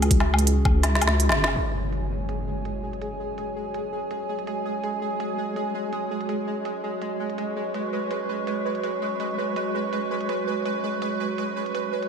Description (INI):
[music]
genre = half-time drum and bass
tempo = 165 BPM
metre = 4/4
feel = swing 53% on 16ths, half-time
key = unclear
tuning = A4 = 442 Hz
[part]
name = dark analog pad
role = sustained chords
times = 0.0-12.1 s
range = C#4 to C#6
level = -30 LUFS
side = equal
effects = chorus, sidechain pumping
[part]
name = deep soft wobble bass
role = bass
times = 0.0-1.5 s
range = F#1 to C#2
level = -21 LUFS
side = equal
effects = chorus, tube saturation
[part]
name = organic electronic drum kit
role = drums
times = 0.0-12.1 s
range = hi-hat, snare drum, woodblock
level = -25 LUFS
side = left 1 dB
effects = low-pass filter on hats, low-pass filter on perc, low-pass filter on snare, low-pass filter on room
[part]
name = electronic kick drum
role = drums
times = 0.1-0.7 s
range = none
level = -20 LUFS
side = equal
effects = overdrive
[part]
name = impact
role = sound effects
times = 1.6-3.0 s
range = none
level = -31 LUFS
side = equal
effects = none
[part]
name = pulsing gated texture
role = texture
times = 2.1-12.1 s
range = G#3 to B4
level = -29 LUFS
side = right 2 dB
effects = chorus, built-in reverb
[sound]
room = moderate plate reverb, RT60 1.7 s, digital ambience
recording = bright 1980s-style digital production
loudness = -24 LUFS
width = side -6 dB against mid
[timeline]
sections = 0.0-1.6 A section; 1.6-12.1 B section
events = drop 0.0-1.6; drum fill 0.8-1.6; kick drops out 1.2-1.6; impact 1.6-3.0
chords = 0.0 F#5